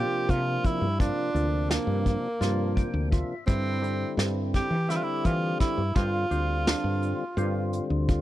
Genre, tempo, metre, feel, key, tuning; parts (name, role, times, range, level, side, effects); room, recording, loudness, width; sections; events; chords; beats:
progressive instrumental, band music in an uneven meter; 169 BPM (eighths); 7/8; straight; G dorian; A4 = 441 Hz
clear tenor saxophone; melody; 0.0-7.7 s; Bb3 to G4; -30 LUFS; right 2 dB
percussive tonewheel organ; accompaniment; 0.0-8.2 s; C3 to G5; -33 LUFS; left 4 dB; overdrive, slow rotary speaker
barky tine electric piano; arpeggios; 0.0-8.2 s; F3 to E5; -35 LUFS; right 6 dB; wide subtle chorus
woody fretless electric bass; bass; 0.0-8.2 s; D2 to E3; -28 LUFS; equal
vintage brush drum kit; drums; 0.3-8.2 s; hi-hat, kick drum, snare drum; -26 LUFS; equal
little or no reverb; dry, close 1970s-style studio recording; -24 LUFS; side -14 dB against mid
0.0-8.2 A section
tonewheel organ fill 2.4-3.5
0.0 Gm7; 3.5 C/G; 6.0 G5
0.29 0.64 | 1.00 1.35 1.71 2.06 2.41 2.77 3.12 | 3.48 3.83 4.19 4.54 4.90 5.25 5.61 | 5.96 6.31 6.67 7.02 7.38 7.73 8.09